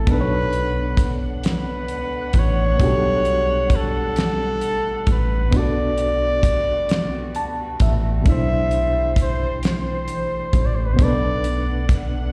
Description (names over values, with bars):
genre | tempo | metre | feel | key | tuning
slow six-eight R&B | 44 BPM (dotted quarters) | 6/8 | straight | unclear | A4 = 440 Hz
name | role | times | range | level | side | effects
warm flugelhorn | melody | 0.0-12.0 s | A4 to E5 | -26 LUFS | equal | slapback echo
bright reed electric piano | accompaniment | 0.0-12.3 s | B2 to A5 | -29 LUFS | equal | fast tremolo, slapback echo
warm studio string section | sustained chords | 0.0-12.3 s | E3 to F#5 | -35 LUFS | equal | none
woody fretless electric bass | bass | 0.0-12.3 s | A1 to C#2 | -26 LUFS | equal | none
damped 70s drum kit | drums | 0.1-12.1 s | hi-hat, kick drum, snare drum | -21 LUFS | equal | none
room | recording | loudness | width
light reverb | live gig heard through the venue's PA, recital hall reverb | -20 LUFS | mono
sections
0.0-12.3 A section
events
reed electric piano fill 6.9-8.3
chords
0.1 Bm7; 2.8 Gmaj9#11; 5.5 Gmaj9/B; 8.3 C6/B; 11.0 Bm7